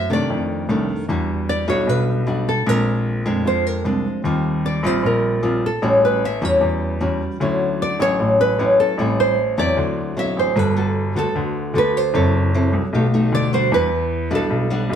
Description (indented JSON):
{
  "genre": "bossa nova",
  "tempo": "152 BPM",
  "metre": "4/4",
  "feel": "straight",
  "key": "G major from 10.6 s",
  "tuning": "A4 = 440 Hz",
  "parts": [
    { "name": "nylon-string guitar", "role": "melody", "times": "0.0-15.0 s", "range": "A4 to E5", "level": "-22 LUFS", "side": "right 2 dB", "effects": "plate reverb" },
    { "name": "nylon-string guitar", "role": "accompaniment", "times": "0.0-15.0 s", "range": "F2 to A4", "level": "-20 LUFS", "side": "left 1 dB", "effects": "none" },
    { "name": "warm baby grand piano", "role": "bass", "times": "0.0-15.0 s", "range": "F#1 to C3", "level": "-22 LUFS", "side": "equal", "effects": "none" }
  ],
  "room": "moderate studio reverb, RT60 0.7 s",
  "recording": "heard from further back in the room",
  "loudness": "-17 LUFS",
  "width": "side -8 dB against mid",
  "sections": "0.0-10.6 A section; 10.6-15.0 B section",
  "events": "none",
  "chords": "0.3 F6; 1.1 Em9; 2.7 Bb9; 4.2 Eb69; 5.8 A6; 7.4 Dmaj9; 9.0 Am7; 9.8 D9; 10.6 Gmaj9; 12.1 F#m7b5; 12.9 B7alt; 13.7 Em9",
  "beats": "0.30 0.69 | 1.09 1.48 1.88 2.27 | 2.67 3.06 3.46 3.85 | 4.25 4.64 5.04 5.43 | 5.83 6.22 6.62 7.01 | 7.41 7.80 8.20 8.59 | 8.98 9.38 9.78 10.17 | 10.56 10.96 11.35 11.75 | 12.14 12.54 12.93 13.33 | 13.72 14.12 14.51 14.90"
}